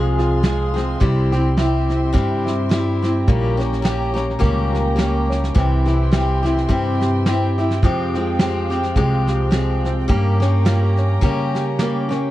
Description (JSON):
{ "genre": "acoustic folk duo or small band", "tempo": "106 BPM", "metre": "4/4", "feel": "swing 56% on 8ths", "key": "F harmonic minor", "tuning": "A4 = 440 Hz", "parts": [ { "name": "picked steel-string acoustic guitar", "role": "accompaniment", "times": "0.0-12.3 s", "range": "F2 to Ab4", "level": "-22 LUFS", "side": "left 3 dB", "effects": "none" }, { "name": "dark chamber string section", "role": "sustained chords", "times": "0.0-12.3 s", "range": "Ab4 to C6", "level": "-30 LUFS", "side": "right 1 dB", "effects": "none" }, { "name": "clear upright piano", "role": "arpeggios", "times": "0.0-12.3 s", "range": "E3 to G4", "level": "-26 LUFS", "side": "right 6 dB", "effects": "none" }, { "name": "upright bass", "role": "bass", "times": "0.0-12.3 s", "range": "Bb1 to Db3", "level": "-20 LUFS", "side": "equal", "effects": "none" }, { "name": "soft brush drum kit", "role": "drums", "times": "0.2-12.2 s", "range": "kick drum, snare drum", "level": "-20 LUFS", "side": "equal", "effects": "none" } ], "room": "little or no reverb", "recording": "cassette tape", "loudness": "-16 LUFS", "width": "side -15 dB against mid", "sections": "0.0-12.3 A section", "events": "none", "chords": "0.0 Fm; 1.0 C; 3.3 Gdim/Bb; 5.6 C; 7.8 Fmadd9; 10.1 Gdim", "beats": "0.44 | 1.01 1.58 2.15 2.72 | 3.28 3.85 4.42 4.99 | 5.55 6.12 6.69 7.26 | 7.82 8.39 8.96 9.52 | 10.09 10.65 11.22 11.79" }